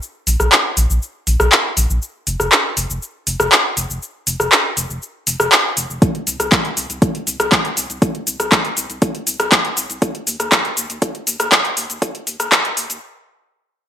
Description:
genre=progressive house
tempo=120 BPM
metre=4/4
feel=straight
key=unclear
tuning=A4 = 442 Hz
part: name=deep house drum kit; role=drums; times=0.0-13.0 s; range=handclaps, hi-hat, rim click, shaker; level=-14 LUFS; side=equal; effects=overdrive, high-pass filter on perc, high-pass filter on hats, high-pass filter on snare, high-pass filter on room
part: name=round analog bass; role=bass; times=0.3-13.0 s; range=F1 to Eb2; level=-22 LUFS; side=equal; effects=sidechain pumping
part: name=electronic kick drum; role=drums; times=6.0-12.6 s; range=none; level=-17 LUFS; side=equal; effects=overdrive
room=moderate digital room reverb, RT60 1.1 s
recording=high-pass filter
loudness=-15 LUFS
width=side -9 dB against mid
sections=0.0-13.9 A section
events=build-up 0.0-13.9; stop 13.0-13.9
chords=none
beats=| 0.02 0.52 1.02 1.52 | 2.02 2.52 3.02 3.52 | 4.02 4.52 5.02 5.52 | 6.02 6.52 7.02 7.52 | 8.02 8.52 9.02 9.52 | 10.02 10.52 11.02 11.52 | 12.02 12.52

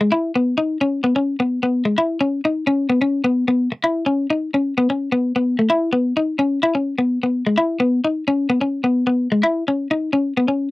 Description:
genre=highlife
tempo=129 BPM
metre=4/4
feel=straight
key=unclear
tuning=A4 = 440 Hz
part: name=clean electric guitar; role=solo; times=0.0-10.7 s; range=G#3 to E4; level=-17 LUFS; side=left 2 dB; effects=none
room=moderate booth ambience, RT60 0.2 s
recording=home recording on cassette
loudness=-17 LUFS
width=side -19 dB against mid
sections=0.0-5.7 A section; 5.7-10.7 B section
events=none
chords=none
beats=| 0.11 0.58 1.04 1.51 | 1.98 2.44 2.91 3.37 | 3.84 4.31 4.77 5.24 | 5.71 6.17 6.64 7.11 | 7.57 8.04 8.50 8.97 | 9.44 9.90 10.37

